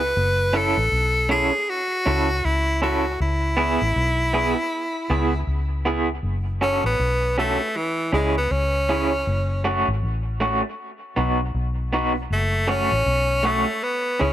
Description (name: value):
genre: roots reggae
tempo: 79 BPM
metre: 4/4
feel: swing 61% on 16ths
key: F# minor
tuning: A4 = 440 Hz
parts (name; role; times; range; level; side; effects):
- edgy tenor saxophone; melody; 0.0-14.3 s; E3 to B4; -22 LUFS; equal; dub echo
- vintage muted fingered electric bass; bass; 0.0-14.3 s; F#1 to C#2; -24 LUFS; left 1 dB; none
- electric guitar through a small old amp; accompaniment; 0.5-14.3 s; A3 to A4; -25 LUFS; right 2 dB; tremolo, dub echo
room: light reverb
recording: none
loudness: -20 LUFS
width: side -12 dB against mid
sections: 0.0-6.2 A section; 6.2-14.3 B section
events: tenor saxophone solo 6.2-14.3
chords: 0.2 F#m7; 3.2 C#m7; 6.2 F#m; 7.8 C#m; 9.3 F#m; 10.8 B; 12.3 F#m; 13.8 C#m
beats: | 0.16 0.92 1.68 2.44 | 3.20 3.96 4.71 5.47 | 6.23 6.99 7.75 8.51 | 9.27 10.03 10.79 11.54 | 12.30 13.06 13.82